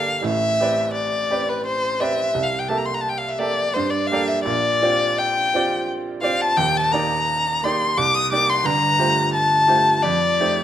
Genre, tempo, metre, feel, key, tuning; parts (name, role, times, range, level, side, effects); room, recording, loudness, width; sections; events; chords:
classical, impressionist duo for violin and grand piano; 86 BPM; 3/4; rubato; G dorian; A4 = 440 Hz
warm violin; melody; 0.0-10.6 s; B4 to Eb6; -19 LUFS; left 2 dB
clear baby grand piano; accompaniment; 0.0-10.6 s; Eb1 to E5; -23 LUFS; right 4 dB
moderate recital hall reverb, RT60 1.3 s; close, detailed microphones; -18 LUFS; side -10 dB against mid
0.0-10.6 A section
0.2 Am11; 2.3 C6; 3.7 Gmadd9; 4.4 Bb69; 6.6 Ebmaj7; 8.0 Cm9; 8.6 Gm11; 10.0 F9